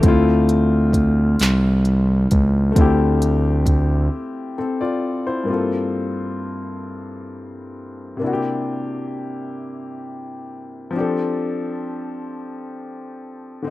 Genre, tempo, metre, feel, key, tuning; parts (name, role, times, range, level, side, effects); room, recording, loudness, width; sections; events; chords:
slow six-eight R&B; 44 BPM (dotted quarters); 6/8; straight; D minor; A4 = 439 Hz
dark grand piano; accompaniment; 0.0-13.7 s; G2 to D5; -23 LUFS; left 3 dB
smooth gliding synth bass; bass; 0.0-4.1 s; C2 to D2; -16 LUFS; equal
smooth R&B drum kit; drums; 0.0-3.9 s; handclaps, hi-hat, kick drum; -18 LUFS; equal
digital ambience; rough home demo mix; -17 LUFS; side -17 dB against mid
0.0-5.5 A section; 5.5-13.7 B section
break 4.1-5.5
0.0 Dm9; 5.5 Gm11; 8.2 C9; 10.9 F69